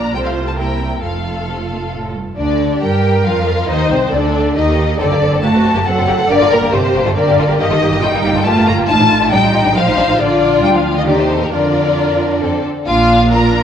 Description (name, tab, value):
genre	quick classical-period movement for string orchestra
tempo	138 BPM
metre	3/4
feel	straight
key	G minor, Bb major from 7.6 s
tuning	A4 = 440 Hz
part	warm studio violin section	melody	0.0-13.6 s	Bb4 to Bb5	-17 LUFS	left 4 dB	none
part	rich studio violin section	second line	0.0-13.6 s	A3 to D5	-19 LUFS	left 2 dB	none
part	rich studio viola section	accompaniment	0.0-13.6 s	A3 to C5	-20 LUFS	right 2 dB	none
part	rich studio cello section	bass	0.0-13.6 s	F2 to Bb3	-18 LUFS	right 2 dB	none
part	rich studio double bass section	bass	0.0-13.6 s	F1 to G2	-20 LUFS	right 3 dB	none
room	moderate scoring stage reverb, RT60 1.7 s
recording	worn, warbling old tape, cassette tape, warbly pitch drift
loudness	-12 LUFS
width	side -8 dB against mid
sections	0.0-2.4 A section; 2.4-12.9 B section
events	none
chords	0.2 F/C; 0.6 C7; 1.0 F; 2.4 Gm/D; 3.7 Am7b5; 5.0 D7/F#; 6.3 Gm; 7.6 Eb/G; 8.9 F7/A; 10.2 Bb; 11.1 Eb; 11.5 Bb/F; 12.4 F; 12.9 Bb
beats	0.16 0.59 | 1.03 1.48 1.93 | 2.38 2.82 3.25 | 3.69 4.13 4.57 | 5.00 5.43 5.87 | 6.30 6.73 7.16 | 7.59 8.03 8.46 | 8.89 9.32 9.76 | 10.19 10.63 11.07 | 11.52 11.97 12.42 | 12.87 13.31